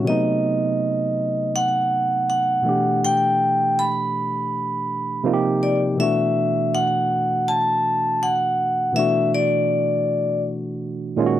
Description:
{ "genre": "R&B", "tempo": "81 BPM", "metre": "4/4", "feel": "swing 59% on 16ths", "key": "D major", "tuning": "A4 = 440 Hz", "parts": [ { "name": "barky tine electric piano", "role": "accompaniment", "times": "0.0-11.4 s", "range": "A#2 to G4", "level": "-23 LUFS", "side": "moving between left 1 dB and right 5 dB", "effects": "overdrive, auto-pan" }, { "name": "vibraphone with hard mallets", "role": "melody", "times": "0.1-10.4 s", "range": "D5 to B5", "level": "-20 LUFS", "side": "equal", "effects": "slapback echo" } ], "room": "light reverb", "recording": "dry, close 1970s-style studio recording", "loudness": "-18 LUFS", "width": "side -12 dB against mid", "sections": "0.0-11.4 A section", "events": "none", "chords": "0.1 B7b9; 2.6 Em7; 5.2 Ebmaj9; 6.0 Dadd9" }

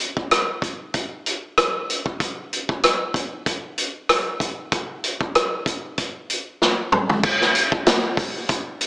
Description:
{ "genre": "soul", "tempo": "95 BPM", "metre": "4/4", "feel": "swing 54% on 16ths", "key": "none", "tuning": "none", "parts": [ { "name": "vintage drum kit", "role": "drums", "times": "0.0-8.9 s", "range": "crash cymbal, hi-hat, kick drum, rim click, snare drum, toms", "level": "-19 LUFS", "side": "equal", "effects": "none" }, { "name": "tambourine", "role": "percussion", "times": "7.3-8.9 s", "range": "none", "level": "-34 LUFS", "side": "left 1 dB", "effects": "none" } ], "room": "moderate echo chamber reverb, RT60 2.1 s", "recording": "small speaker sound", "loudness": "-19 LUFS", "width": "side -27 dB against mid", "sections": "0.0-7.2 A section; 7.2-8.9 B section", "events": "drum fill 6.6-7.2", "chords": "none" }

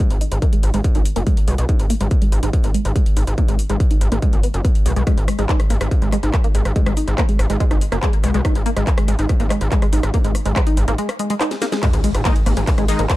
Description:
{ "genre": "driving peak-time techno", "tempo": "142 BPM", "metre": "4/4", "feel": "straight", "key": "G# minor", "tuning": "A4 = 440 Hz", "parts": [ { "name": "tight sequenced synth", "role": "riff", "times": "0.0-13.1 s", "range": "G#3 to D#4", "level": "-24 LUFS", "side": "equal", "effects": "chorus, sidechain pumping, ping-pong delay" }, { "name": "electronic kick drum", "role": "drums", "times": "0.0-13.2 s", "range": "none", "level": "-17 LUFS", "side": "equal", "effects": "distortion" }, { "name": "techno drum kit", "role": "drums", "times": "0.0-13.2 s", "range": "handclaps, hi-hat, ride cymbal, rim click, snare drum", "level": "-27 LUFS", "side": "equal", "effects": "none" }, { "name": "gritty driven synth bass", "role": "bass", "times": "0.1-13.1 s", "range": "F#1 to B1", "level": "-20 LUFS", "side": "equal", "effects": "sidechain pumping" }, { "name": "impact", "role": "sound effects", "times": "11.8-13.2 s", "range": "none", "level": "-27 LUFS", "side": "equal", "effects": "none" }, { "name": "supersaw stab", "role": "stabs", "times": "12.3-13.0 s", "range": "D#3 to D#4", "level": "-24 LUFS", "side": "left 2 dB", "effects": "sidechain pumping, digital delay" } ], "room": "little or no reverb", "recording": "dark, warm production, lossy compression artefacts", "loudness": "-15 LUFS", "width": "side -17 dB against mid", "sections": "0.0-11.8 A section; 11.8-13.2 B section", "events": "filter sweep on synth arpeggio sound 0.0-11.8; break 11.0-11.8; drum fill 11.5-11.8; band accent 11.7; drop 11.8-13.2; impact 11.8-13.2", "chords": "0.0 G#5" }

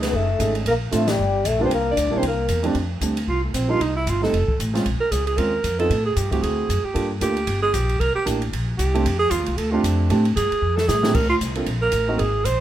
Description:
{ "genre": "jazz, small-group swing and bop", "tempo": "229 BPM", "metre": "4/4", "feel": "swing 58% on 8ths", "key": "F major", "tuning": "A4 = 440 Hz", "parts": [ { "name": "breathy alto saxophone", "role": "second line", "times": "0.0-12.6 s", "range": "A3 to D5", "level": "-23 LUFS", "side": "right 3 dB", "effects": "none" }, { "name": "dark grand piano", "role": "accompaniment", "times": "0.0-12.2 s", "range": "F2 to Bb4", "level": "-25 LUFS", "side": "right 3 dB", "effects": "none" }, { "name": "upright bass", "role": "bass", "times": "0.0-12.6 s", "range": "F1 to A2", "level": "-23 LUFS", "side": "equal", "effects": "none" }, { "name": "open jazz drum kit", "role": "drums", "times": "0.0-12.5 s", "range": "crash cymbal, hi-hat, kick drum, ride cymbal, snare drum", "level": "-29 LUFS", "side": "equal", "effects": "none" }, { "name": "trombone with bucket mute", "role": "melody", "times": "0.1-2.6 s", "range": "G3 to D4", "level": "-23 LUFS", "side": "left 4 dB", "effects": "none" } ], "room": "light reverb", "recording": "none", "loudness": "-19 LUFS", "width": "side -12 dB against mid", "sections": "0.0-2.8 A section; 2.8-11.1 B section; 11.1-12.6 B section", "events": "band accent 1.0; alto saxophone solo 2.8-12.6; drum fill 10.6-11.1", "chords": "0.0 B13; 0.7 Bbmaj9; 1.2 Gm7; 1.7 Csus2; 2.2 C7; 2.8 F6; 3.8 Cm; 4.3 F; 4.8 Bbm7; 5.9 Am7; 6.4 D7; 6.9 Gm9; 8.0 C7; 9.0 F6; 11.1 Bbmaj9" }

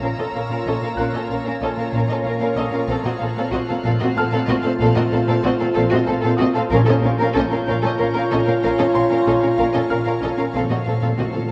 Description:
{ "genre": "cinematic, suspense film score", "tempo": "94 BPM", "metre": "3/4", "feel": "straight", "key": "Bb harmonic minor", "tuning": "A4 = 439 Hz", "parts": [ { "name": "warm studio violin section", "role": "melody", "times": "0.0-11.5 s", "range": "Eb5 to F5", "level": "-32 LUFS", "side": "equal", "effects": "none" }, { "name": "warm studio violin section", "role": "second line", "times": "0.0-11.5 s", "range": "Gb4 to Bb4", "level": "-27 LUFS", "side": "equal", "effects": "none" }, { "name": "dark studio viola section", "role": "accompaniment", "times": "0.0-11.4 s", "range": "C4 to Db4", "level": "-27 LUFS", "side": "equal", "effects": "none" }, { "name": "mellow French horn section", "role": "sustained chords", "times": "0.0-11.5 s", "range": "F3 to F4", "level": "-26 LUFS", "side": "equal", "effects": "none" }, { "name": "shimmering ambient pad", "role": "sustained chords", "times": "0.0-11.5 s", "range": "F4 to Bb5", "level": "-33 LUFS", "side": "equal", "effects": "chorus, built-in reverb" }, { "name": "warm studio cello section", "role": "bass", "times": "0.0-11.5 s", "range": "Bb2", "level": "-28 LUFS", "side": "equal", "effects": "none" }, { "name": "warm symphonic double bass section", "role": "bass", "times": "0.0-11.2 s", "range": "Bb1", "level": "-29 LUFS", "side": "equal", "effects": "none" }, { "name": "impact", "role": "sound effects", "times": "0.3-1.0 s", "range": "none", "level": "barely audible", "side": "none", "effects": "none" }, { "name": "bright grand piano", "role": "texture", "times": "0.0-11.5 s", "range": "Db5 to Bb6", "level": "-34 LUFS", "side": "equal", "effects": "none" }, { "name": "dark studio violin section", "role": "texture", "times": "0.0-11.5 s", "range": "Bb5 to Db7", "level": "-40 LUFS", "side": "equal", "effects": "none" }, { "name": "timpani", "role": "percussion", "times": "6.7-7.6, 10.5-11.5 s", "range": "Bb2", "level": "-29 LUFS", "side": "equal", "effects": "none" } ], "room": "wet recital hall reverb, RT60 1.8 s", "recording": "worn, warbling old tape, cassette tape, warbly pitch drift", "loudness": "-19 LUFS", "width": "mono", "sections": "0.0-11.5 A section", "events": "impact 0.0-1.0; timpani fill 10.5-11.5", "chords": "0.0 Bbm; 2.9 F/Bb; 6.7 Bbm; 10.5 F/Bb" }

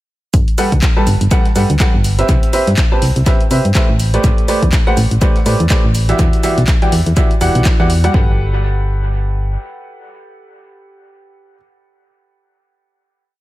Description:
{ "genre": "piano house", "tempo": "123 BPM", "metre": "4/4", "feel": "swing 58% on 16ths", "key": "G major", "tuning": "A4 = 440 Hz", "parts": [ { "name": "solid FM bass", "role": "bass", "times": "0.3-9.6 s", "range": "E1 to C3", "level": "-14 LUFS", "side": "equal", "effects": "sidechain pumping" }, { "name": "breakbeat sampler-style drum kit", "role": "drums", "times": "0.3-7.8 s", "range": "hi-hat, shaker, snare drum", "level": "-32 LUFS", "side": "right 4 dB", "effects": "none" }, { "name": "electronic kick drum", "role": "drums", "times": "0.3-8.3 s", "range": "none", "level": "-13 LUFS", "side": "equal", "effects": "none" }, { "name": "punchy analog drum machine", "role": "drums", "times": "0.3-8.1 s", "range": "handclaps, hi-hat", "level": "-24 LUFS", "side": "equal", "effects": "dub echo" }, { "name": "bright baby grand piano", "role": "riff", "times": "0.6-11.5 s", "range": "E3 to A5", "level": "-18 LUFS", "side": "right 1 dB", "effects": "sidechain pumping, dub echo" } ], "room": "digital ambience", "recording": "echo-heavy mix", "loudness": "-11 LUFS", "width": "side -16 dB against mid", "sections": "0.3-8.1 drop; 8.1-12.0 final chord", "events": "drop 0.3-8.1", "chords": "0.3 Gmaj9; 2.3 Cmaj7; 4.0 Am11; 6.2 Em9; 8.1 Gmaj9" }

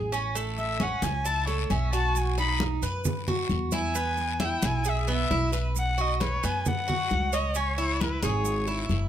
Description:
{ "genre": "latin, Cuban son and guajira", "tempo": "133 BPM", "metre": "4/4", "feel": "straight", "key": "unclear", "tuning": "A4 = 440 Hz", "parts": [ { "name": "Cuban tres", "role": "arpeggios", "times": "0.0-9.1 s", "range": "A3 to C#5", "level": "-31 LUFS", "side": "right 3 dB", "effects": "none" }, { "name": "upright bass", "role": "bass", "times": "0.0-9.1 s", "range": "F#1 to F#2", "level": "-29 LUFS", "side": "equal", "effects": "none" }, { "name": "guiro", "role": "percussion", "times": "0.1-9.1 s", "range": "none", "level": "-40 LUFS", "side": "left 10 dB", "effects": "none" }, { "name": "maracas", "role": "percussion", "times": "0.1-9.1 s", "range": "none", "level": "-39 LUFS", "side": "right 9 dB", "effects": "none" }, { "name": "congas", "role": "percussion", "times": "0.4-9.1 s", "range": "none", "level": "-32 LUFS", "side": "left 2 dB", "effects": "none" }, { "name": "warm erhu", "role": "melody", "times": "0.6-8.9 s", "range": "B4 to B5", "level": "-30 LUFS", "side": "left 2 dB", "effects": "none" } ], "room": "little or no reverb", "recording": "close, detailed microphones", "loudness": "-24 LUFS", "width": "side -10 dB against mid", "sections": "0.0-5.8 A section; 5.8-9.1 B section", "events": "erhu solo 0.0-5.8", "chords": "0.4 A; 2.2 B; 4.0 E; 5.8 Bsus2; 7.6 C#m" }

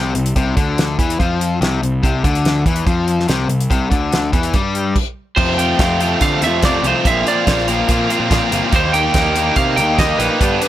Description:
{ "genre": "classic rock", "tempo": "143 BPM", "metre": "4/4", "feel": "straight", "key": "unclear", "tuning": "A4 = 437 Hz", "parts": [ { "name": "cranked stack guitar", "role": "riff", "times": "0.0-10.7 s", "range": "F2 to G4", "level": "-18 LUFS", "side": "left 4 dB", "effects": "overdrive" }, { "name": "fuzz picked electric bass", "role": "bass", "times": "0.0-10.6 s", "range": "G1 to D3", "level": "-21 LUFS", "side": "right 1 dB", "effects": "overdrive" }, { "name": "damped 70s drum kit", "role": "drums", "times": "0.2-10.7 s", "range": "crash cymbal, hi-hat, kick drum, snare drum", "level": "-18 LUFS", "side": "right 1 dB", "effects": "none" }, { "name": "lightly driven lead guitar", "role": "melody", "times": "5.4-10.7 s", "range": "B4 to G5", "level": "-18 LUFS", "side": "right 3 dB", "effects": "slapback echo" }, { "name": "tight distorted guitar", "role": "riff", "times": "5.4-10.7 s", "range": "F2 to F4", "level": "-21 LUFS", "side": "right 15 dB", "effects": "distortion" } ], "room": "little or no reverb", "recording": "none", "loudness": "-14 LUFS", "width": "side -13 dB against mid", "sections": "0.0-5.4 A section; 5.4-10.7 B section", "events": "none", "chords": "0.0 C; 5.4 Fadd9; 7.1 Bbsus2; 8.7 Eb" }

